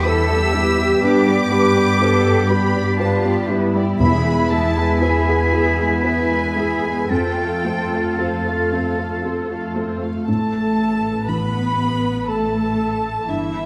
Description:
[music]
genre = cinematic, emotional film score for orchestra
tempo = 55-62 BPM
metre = 3/4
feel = rubato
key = A minor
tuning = A4 = 440 Hz
[part]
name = muted symphonic violin section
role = melody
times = 0.0-13.7 s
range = A4 to E6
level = -29 LUFS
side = equal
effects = none
[part]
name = clear clarinet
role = second line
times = 0.0-9.9 s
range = E4 to G4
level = -28 LUFS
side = equal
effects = none
[part]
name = mellow hollow concert flute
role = second line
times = 0.0-9.9 s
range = A6 to B6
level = -28 LUFS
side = equal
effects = none
[part]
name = muted symphonic violin section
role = second line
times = 0.0-13.7 s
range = E4 to B5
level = -31 LUFS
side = equal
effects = none
[part]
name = felt-muted upright piano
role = accompaniment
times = 0.0-13.7 s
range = E2 to B4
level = -27 LUFS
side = equal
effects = none
[part]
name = muted symphonic viola section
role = accompaniment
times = 0.0-13.7 s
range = E3 to B4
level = -29 LUFS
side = equal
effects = none
[part]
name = dark French horn section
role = sustained chords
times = 0.0-9.9 s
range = A3 to G4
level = -27 LUFS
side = equal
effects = none
[part]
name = muted symphonic cello section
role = bass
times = 0.0-13.7 s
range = E3 to B4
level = -26 LUFS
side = equal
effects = none
[part]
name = muted symphonic double bass section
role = bass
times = 0.0-13.7 s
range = G1 to G2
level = -26 LUFS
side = equal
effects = none
[part]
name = timpani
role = percussion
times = 4.0-5.5 s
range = E2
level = -26 LUFS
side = equal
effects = none
[part]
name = muted violin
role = melody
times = 10.3-13.7 s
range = E5 to B5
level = -30 LUFS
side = equal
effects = none
[sound]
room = moderate scoring stage reverb, RT60 1.6 s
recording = none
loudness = -19 LUFS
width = mono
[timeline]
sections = 0.0-10.3 A section; 10.3-13.7 B section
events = none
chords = 0.0 Em; 1.0 G; 4.0 E; 7.1 F; 10.3 Asus2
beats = 0.05 | 1.03 2.00 2.99 | 4.00 5.02 6.04 | 7.10 8.19 9.24 | 10.27 11.28 12.28 | 13.29

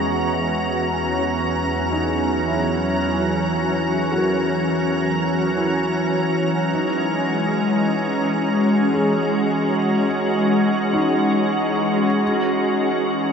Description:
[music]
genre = ambient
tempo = free time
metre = none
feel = none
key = E lydian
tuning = A4 = 441 Hz
[part]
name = soft additive organ-like pad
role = sustained chords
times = 0.0-13.3 s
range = E2 to A#5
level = -19 LUFS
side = equal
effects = ensemble chorus, built-in reverb
[part]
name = felt-muted upright piano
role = arpeggios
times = 0.0-12.2 s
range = C#4 to A#4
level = -28 LUFS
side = equal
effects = none
[part]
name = organ-like drone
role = drone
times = 0.0-13.3 s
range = E3 to F#4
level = -26 LUFS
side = right 1 dB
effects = ensemble chorus, built-in reverb
[sound]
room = wet huge ambient reverb, RT60 7.6 s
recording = none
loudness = -18 LUFS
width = side -6 dB against mid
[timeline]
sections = 0.0-13.3 A section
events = none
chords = 0.0 Eadd9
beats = free time

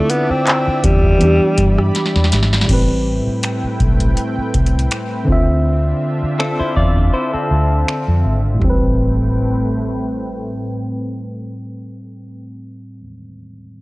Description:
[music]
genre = contemporary R&B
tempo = 81 BPM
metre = 4/4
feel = swing 54% on 16ths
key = A minor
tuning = A4 = 438 Hz
[part]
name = mellow alto saxophone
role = melody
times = 0.0-2.3 s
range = G3 to C4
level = -18 LUFS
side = equal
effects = tape echo
[part]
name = tine electric piano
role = accompaniment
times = 0.0-13.8 s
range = A2 to E5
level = -21 LUFS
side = equal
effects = low-pass filter
[part]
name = lush unison pad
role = sustained chords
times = 0.0-12.3 s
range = A2 to B5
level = -25 LUFS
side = equal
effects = chorus, low-pass filter
[part]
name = booming analog drum machine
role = drums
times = 0.1-8.8 s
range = crash cymbal, finger snaps, handclaps, hi-hat, kick drum, rim click, snare drum, toms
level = -18 LUFS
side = equal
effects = none
[part]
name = vintage muted fingered electric bass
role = bass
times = 0.3-13.0 s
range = G#1 to G2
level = -17 LUFS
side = equal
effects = none
[part]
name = direct-recorded clean electric guitar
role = arpeggios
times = 6.4-8.4 s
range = C4 to D5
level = -21 LUFS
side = left 2 dB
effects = spring reverb, low-pass filter, tape echo
[sound]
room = little or no reverb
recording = dry, gritty hardware recording, cassette tape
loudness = -14 LUFS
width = side -21 dB against mid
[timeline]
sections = 0.0-2.7 A section; 2.7-8.6 B section; 8.6-11.6 C section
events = drum fill 1.9-2.7; filter sweep 2.7-8.6; kick muted 7.1-8.6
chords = 0.0 Dm9; 1.2 Em7; 2.7 Am9; 5.3 Dm9; 8.6 Am9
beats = 0.47 1.21 1.95 | 2.69 3.43 4.17 4.91 | 5.65 6.39 7.14 7.88 | 8.62 9.36 10.10 10.84

